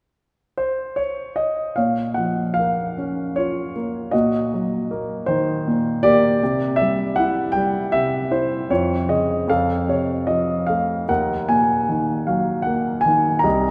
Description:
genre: classical, lyrical solo piano.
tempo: 77 BPM.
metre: 3/4.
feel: rubato.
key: Bb minor.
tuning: A4 = 440 Hz.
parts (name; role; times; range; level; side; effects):
warm grand piano; solo; 0.6-13.7 s; C2 to Bb5; -21 LUFS; equal; none.
room: wet church reverb, RT60 3.0 s.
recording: recorded in a church or concert hall.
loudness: -21 LUFS.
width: mono.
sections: 0.0-1.8 A section; 1.8-13.7 B section.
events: none.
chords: 0.0 N.C.; 1.8 Bbm; 4.1 Ebm/Bb; 6.4 C; 8.7 Dbadd9/F; 9.5 F; 11.1 Ebm.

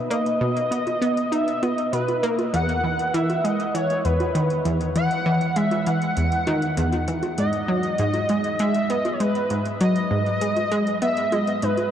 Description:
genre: ambient, sequencer-driven space music.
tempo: 99 BPM.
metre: 4/4.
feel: straight.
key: G# minor.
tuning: A4 = 440 Hz.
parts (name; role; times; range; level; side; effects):
expressive portamento lead; melody; 0.1-11.9 s; B4 to F#5; -24 LUFS; equal; analog chorus, ping-pong delay.
analog pluck; riff; 0.1-11.8 s; E2 to D#4; -22 LUFS; equal; chorus, ping-pong delay.
electronic hi-hat and bongos; percussion; 0.1-11.9 s; none; -34 LUFS; left 1 dB; overdrive, ping-pong delay.
room: wet huge ambient reverb, RT60 8.2 s.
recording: worn, warbling old tape, cassette tape, warbly pitch drift.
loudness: -20 LUFS.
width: side -9 dB against mid.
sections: 0.0-11.9 A section.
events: none.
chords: 0.0 B; 2.5 Eadd9; 7.4 G#m7.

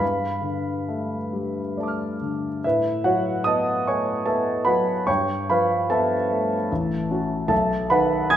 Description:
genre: classical, impressionist solo piano.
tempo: 67-74 BPM.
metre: 3/4.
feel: rubato.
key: unclear.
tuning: A4 = 439 Hz.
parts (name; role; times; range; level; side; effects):
warm grand piano; solo; 0.0-8.4 s; A1 to G#6; -20 LUFS; equal; none.
room: wet recital hall reverb, RT60 1.8 s.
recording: none.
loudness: -21 LUFS.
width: side -10 dB against mid.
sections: 0.0-8.4 A section.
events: none.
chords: 0.0 G9; 2.6 A69; 5.1 G9; 6.7 A6; 7.5 B7.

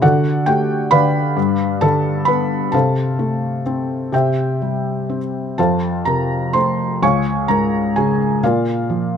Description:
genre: classical, lyrical solo piano.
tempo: 43 BPM (dotted quarters).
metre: 6/8.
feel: uneven beats, rubato.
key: F major.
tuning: A4 = 440 Hz.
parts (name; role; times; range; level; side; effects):
felt-muted upright piano; solo; 0.0-9.2 s; Db2 to Db6; -15 LUFS; equal; none.
room: light reverb.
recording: close, detailed microphones.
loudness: -15 LUFS.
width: side -8 dB against mid.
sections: 0.0-9.2 A section.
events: none.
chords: 0.0 D; 1.4 G7; 2.7 F/C; 4.1 C; 5.6 F; 7.0 Db; 8.4 Bb.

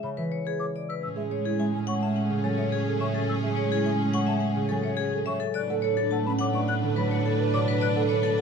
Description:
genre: classical, minimalist pattern music.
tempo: 106 BPM.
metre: 4/4.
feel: straight.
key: A major.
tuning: A4 = 440 Hz.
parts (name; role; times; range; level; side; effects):
vibraphone with hard mallets; melody; 0.0-8.4 s; G#4 to A5; -30 LUFS; left 12 dB; none.
concert harp; accompaniment; 0.0-8.4 s; B2 to C#4; -30 LUFS; equal; none.
marimba with soft mallets; arpeggios; 0.0-8.4 s; C#4 to C#5; -32 LUFS; right 7 dB; none.
mellow hollow concert flute; arpeggios; 0.0-8.4 s; E5 to F#6; -36 LUFS; left 3 dB; none.
clear clarinet; second line; 1.0-8.4 s; C#4 to D4; -36 LUFS; right 5 dB; none.
clear symphonic violin section; sustained chords; 1.0-8.4 s; C#4 to B4; -34 LUFS; left 3 dB; none.
clear double bass; bass; 1.0-8.4 s; A2; -30 LUFS; right 6 dB; none.
room: moderate recital hall reverb, RT60 1.4 s.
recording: close, detailed microphones.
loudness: -24 LUFS.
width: side -6 dB against mid.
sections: 0.0-1.0 A section; 1.0-8.4 B section.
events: none.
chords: 0.0 E; 1.0 Amaj7; 5.6 Bm7/A.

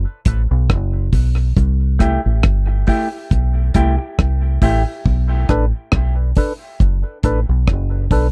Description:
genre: dub reggae.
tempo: 69 BPM.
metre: 4/4.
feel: swing 55% on 16ths.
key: B phrygian.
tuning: A4 = 443 Hz.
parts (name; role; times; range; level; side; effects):
deep dub fingered electric bass; bass; 0.0-8.3 s; F#1 to C2; -18 LUFS; equal; none.
percussive organ stab; stabs; 0.3-8.3 s; D4 to C5; -26 LUFS; equal; chorus, high-pass filter, tape echo.
deep reggae drum kit; drums; 0.3-8.3 s; hi-hat, kick drum, rim click; -19 LUFS; equal; none.
semi-hollow electric guitar; accompaniment; 2.0-4.8 s; A3 to G4; -25 LUFS; equal; spring reverb, tape echo.
room: little or no reverb.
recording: dry, close 1970s-style studio recording.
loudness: -17 LUFS.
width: mono.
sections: 0.0-5.1 A section; 5.1-8.3 B section.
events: break 0.0-1.6.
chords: 0.0 Bm7; 1.6 C6; 5.1 Bm7.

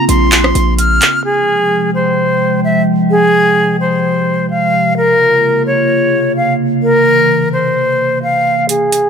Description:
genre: hip hop, trap.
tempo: 129 BPM.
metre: 4/4.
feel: half-time.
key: F harmonic minor.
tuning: A4 = 436 Hz.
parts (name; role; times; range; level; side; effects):
silver concert flute; melody; 0.0-9.1 s; Ab4 to F6; -12 LUFS; equal; low-pass filter, ping-pong delay.
warbly tape-like pad; sustained chords; 0.0-8.7 s; C3 to G5; -15 LUFS; equal; chorus, built-in reverb.
hard-hitting 808-style bass; bass; 0.1-1.0 s; Bb1; -14 LUFS; equal; none.
booming analog drum machine; drums; 0.1-1.1, 8.7-9.0 s; handclaps, hi-hat, rim click; -12 LUFS; right 1 dB; overdrive.
room: light reverb.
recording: none.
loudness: -10 LUFS.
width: side -7 dB against mid.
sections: 0.0-1.2 A section; 1.2-8.7 B section.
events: kick muted 8.7-9.1.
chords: 0.0 Bbmadd9; 1.2 Fmadd9; 5.0 Bbmadd9.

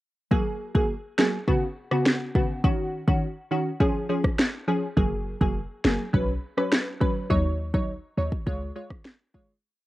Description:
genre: dancehall.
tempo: 103 BPM.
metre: 4/4.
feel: straight.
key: F# major.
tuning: A4 = 444 Hz.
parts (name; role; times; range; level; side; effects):
wavetable chord stab; accompaniment; 0.3-9.5 s; C#3 to C#5; -26 LUFS; equal; cassette tape.
afro-pop drum kit; drums; 0.3-9.5 s; kick drum, rim click, snare drum; -24 LUFS; equal; overdrive, cassette tape.
short 808-style bass; bass; 5.0-8.7 s; E#1 to D#2; -28 LUFS; equal; none.
room: little or no reverb.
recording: home recording on cassette.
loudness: -23 LUFS.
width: side -16 dB against mid.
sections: 0.3-9.6 verse.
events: fade-out 7.3-9.6.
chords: 0.3 F#add9; 1.5 Bsus2; 2.6 D#m7; 3.8 C#; 5.0 F#add9; 6.1 Bsus2; 7.3 D#m7; 8.5 C#.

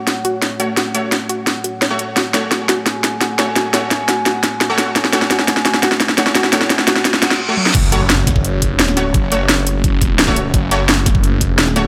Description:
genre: dark technical drum and bass.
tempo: 172 BPM.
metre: 4/4.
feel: straight.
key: F# minor.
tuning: A4 = 445 Hz.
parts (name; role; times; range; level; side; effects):
dark analog pad; sustained chords; 0.0-11.9 s; A3 to G#5; -26 LUFS; equal; lush chorus, sidechain pumping.
analog pluck; arpeggios; 0.1-7.3 s; F#4 to C#5; -25 LUFS; equal; chorus, phaser, sidechain pumping, digital delay.
drum and bass drum kit; drums; 0.1-11.8 s; crash cymbal, hi-hat, snare drum, toms; -18 LUFS; equal; overdrive.
orchestra-hit-like synth stab; stabs; 0.6-11.8 s; A3 to C#5; -24 LUFS; equal; built-in reverb, digital delay.
riser, reverse cymbal and impact; sound effects; 6.3-9.1 s; none; -27 LUFS; equal; none.
phased detuned saw bass; bass; 7.7-11.9 s; F#1; -20 LUFS; equal; phaser, tube saturation.
electronic kick drum; drums; 7.7-11.5 s; none; -19 LUFS; equal; overdrive.
room: moderate lush hall reverb, RT60 1.9 s.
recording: none.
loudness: -15 LUFS.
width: mono.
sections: 0.0-7.7 A section; 7.7-11.9 B section.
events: build-up 0.0-7.7; drum fill 0.0-7.4, 7.6; filter sweep on synth arpeggio sound 0.0-7.7; reverse cymbal 7.0-7.7; drop 7.7-11.9; impact 7.7-9.1.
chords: 0.0 F#m.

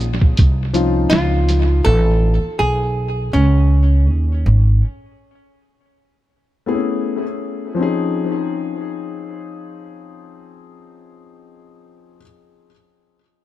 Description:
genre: hip hop, jazz-hop.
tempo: 81 BPM.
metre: 4/4.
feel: swing 59% on 16ths.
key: Db major.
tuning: A4 = 440 Hz.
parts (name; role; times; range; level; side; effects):
archtop guitar, miked and amplified; melody; 0.0-7.0 s; C#4 to A4; -20 LUFS; right 1 dB; tape echo.
upright bass; bass; 0.0-4.8 s; G#1 to Eb2; -14 LUFS; equal; none.
lo-fi sampler-style drum kit; drums; 0.0-1.7 s; hi-hat, kick drum, shaker, snare drum; -17 LUFS; equal; tape echo.
dark concert grand piano; accompaniment; 0.7-1.8, 6.7-12.2 s; F3 to G#4; -22 LUFS; left 4 dB; tape echo.
room: little or no reverb.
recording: echo-heavy mix.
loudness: -14 LUFS.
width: side -14 dB against mid.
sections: 0.0-7.8 A section; 7.8-10.7 B section.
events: none.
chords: 0.0 Dbmaj9; 1.9 Amaj9; 7.8 Dbmaj9.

